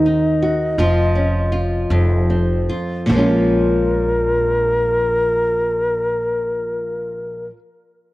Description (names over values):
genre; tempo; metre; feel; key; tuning
six-eight pop ballad; 49-56 BPM (dotted quarters); 6/8; straight; Bb minor; A4 = 440 Hz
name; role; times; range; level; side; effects
bansuri; melody; 0.0-7.5 s; Bb4 to Eb5; -20 LUFS; equal; none
nylon-string guitar; accompaniment; 0.0-7.6 s; F2 to Gb4; -20 LUFS; equal; cassette tape
upright bass; bass; 0.0-7.5 s; F1 to Eb2; -20 LUFS; equal; none
room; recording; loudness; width
light reverb, small room ambience; home recording on cassette; -16 LUFS; side -18 dB against mid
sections
0.0-3.1 A section; 3.1-8.0 B section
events
slowing down 0.0-3.1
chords
0.0 Cdim/Eb; 0.8 Dbadd9/F; 1.9 F5; 3.1 Bbm7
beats
| 0.79 1.91 | 3.10 4.32 | 5.54 6.76